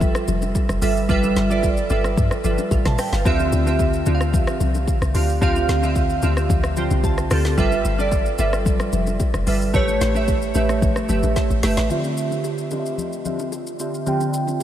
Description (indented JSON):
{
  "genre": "amapiano",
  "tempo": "111 BPM",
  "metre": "4/4",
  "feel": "straight",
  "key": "D dorian",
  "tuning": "A4 = 440 Hz",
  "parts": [
    { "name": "glassy digital keys", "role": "accompaniment", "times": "0.0-14.6 s", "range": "D3 to A5", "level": "-21 LUFS", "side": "right 2 dB", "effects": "chorus, low-pass filter" },
    { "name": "deep log drum bass", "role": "bass", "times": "0.0-11.9 s", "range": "F1 to G2", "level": "-22 LUFS", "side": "equal", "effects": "none" },
    { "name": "deep house drum kit", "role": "drums", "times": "0.0-14.6 s", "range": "hi-hat, kick drum, rim click, shaker, snare drum, toms", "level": "-24 LUFS", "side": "equal", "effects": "none" },
    { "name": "congas and bongos", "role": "percussion", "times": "0.0-14.6 s", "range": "none", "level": "-32 LUFS", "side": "left 8 dB", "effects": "none" }
  ],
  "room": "moderate huge ambient reverb, RT60 6.2 s",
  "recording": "dreamy mix soaked in reverb",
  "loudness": "-18 LUFS",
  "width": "side -11 dB against mid",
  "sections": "0.0-11.9 A section; 11.9-14.6 B section",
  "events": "drop 0.0-11.9; synth keys fill 6.0-7.6, 11.1-11.9; drum fill 11.4-11.9; filter sweep on synth keys 11.9-14.6",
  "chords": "0.0 G13; 3.3 Dm11; 7.6 G13; 9.7 A9; 11.9 Dm11",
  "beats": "0.01 0.55 | 1.09 1.63 2.17 2.71 | 3.25 3.79 4.34 4.88 | 5.42 5.96 6.50 7.04 | 7.58 8.12 8.66 9.20 | 9.74 10.28 10.82 11.36 | 11.90 12.44 12.98 13.53 | 14.06 14.61"
}